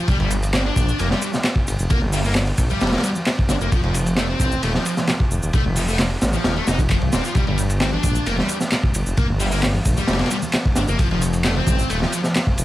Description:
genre	breakbeat, breaks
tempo	132 BPM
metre	4/4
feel	straight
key	G minor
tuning	A4 = 440 Hz
part	thick fuzz guitar	riff	0.0-12.2 s	F3 to Eb4	-25 LUFS	left 1 dB	distortion, tape echo
part	detuned saw bass	bass	0.1-12.6 s	Eb1 to C2	-22 LUFS	equal	none
part	crunchy breakbeat drum kit	drums	0.1-12.6 s	hi-hat, kick drum, ride cymbal, snare drum	-20 LUFS	equal	none
part	electronic shaker and handclaps	drums	0.1-12.6 s	none	-28 LUFS	equal	none
part	congas and bongos	percussion	7.9-12.6 s	none	-31 LUFS	left 2 dB	none
room	small room ambience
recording	vinyl crackle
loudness	-17 LUFS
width	side -15 dB against mid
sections	0.0-12.6 A section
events	none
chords	0.1 Gm; 3.7 F; 7.4 Gm; 11.0 F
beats	| 0.08 0.54 0.99 1.45 | 1.90 2.36 2.81 3.27 | 3.72 4.17 4.63 5.08 | 5.54 5.99 6.45 6.90 | 7.36 7.81 8.27 8.72 | 9.17 9.63 10.08 10.54 | 10.99 11.45 11.90 12.36

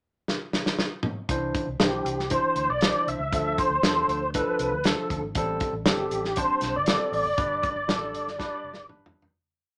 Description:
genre	uptempo 1960s-style soul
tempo	118 BPM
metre	4/4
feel	straight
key	C major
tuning	A4 = 440 Hz
part	warm soul drum kit	drums	0.3-9.3 s	hi-hat, kick drum, snare drum, toms	-28 LUFS	equal	none
part	barky tine electric piano	accompaniment	1.3-9.3 s	Eb3 to C5	-33 LUFS	equal	overdrive
part	vintage muted fingered electric bass	bass	1.3-9.4 s	F1 to E2	-38 LUFS	equal	none
part	tonewheel organ	melody	1.8-8.9 s	G4 to E5	-28 LUFS	equal	chorus vibrato, slow rotary speaker
room	moderate studio ambience, RT60 0.5 s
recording	none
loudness	-26 LUFS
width	mono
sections	0.0-1.3 pickup bar; 1.3-9.4 verse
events	drum fill 0.3-1.3, 8.4-9.4; fade-out 7.4-9.4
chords	0.0 N.C.; 1.3 Cadd9; 3.3 Dm; 5.4 Am7; 7.4 G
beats	0.28 0.79 | 1.29 1.80 2.31 2.81 | 3.32 3.83 4.34 4.84 | 5.35 5.86 6.37 6.87 | 7.38 7.89 8.39 8.90

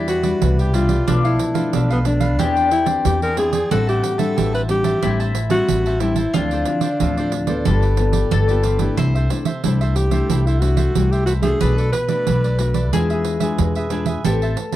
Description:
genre	samba and choro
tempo	91 BPM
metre	4/4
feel	straight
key	E minor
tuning	A4 = 440 Hz
part	breathy alto saxophone	melody	0.0-13.2 s	B3 to B4	-22 LUFS	equal	none
part	mandolin	second line	0.0-14.8 s	D4 to C5	-25 LUFS	left 5 dB	none
part	cavaquinho	accompaniment	0.0-14.8 s	D4 to A5	-29 LUFS	right 4 dB	none
part	nylon-string guitar	accompaniment	0.0-14.8 s	A2 to B4	-25 LUFS	left 3 dB	none
part	upright bass	bass	0.0-14.5 s	G1 to E2	-20 LUFS	equal	none
part	pandeiro	percussion	0.1-14.8 s	none	-24 LUFS	right 10 dB	none
room	light reverb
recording	dry, close 1970s-style studio recording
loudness	-16 LUFS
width	side -13 dB against mid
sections	0.0-14.8 A section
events	none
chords	0.0 Em9; 1.1 Bm7b5; 2.4 E7alt; 3.7 Am7; 6.3 Dm9; 7.7 G9; 9.0 C69; 11.6 Bm7; 12.9 E7b9; 14.3 Am9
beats	0.42 | 1.08 1.74 2.40 3.05 | 3.71 4.37 5.03 5.69 | 6.35 7.01 7.66 8.32 | 8.98 9.64 10.30 10.96 | 11.62 12.28 12.93 13.59 | 14.25

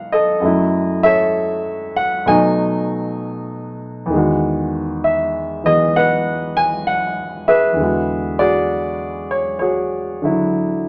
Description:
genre	solo jazz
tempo	65 BPM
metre	4/4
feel	swing 67% on 8ths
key	unclear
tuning	A4 = 436 Hz
part	warm grand piano	solo	0.0-10.9 s	E2 to Ab5	-18 LUFS	equal	none
room	moderate studio reverb, RT60 0.6 s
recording	none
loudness	-18 LUFS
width	mono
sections	0.0-10.9 A section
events	none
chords	0.4 Gbm7; 2.3 B7; 4.1 Emaj9; 7.8 E9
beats	| 0.42 1.34 2.26 3.18 | 4.11 5.03 5.95 6.87 | 7.78 8.70 9.62 10.54

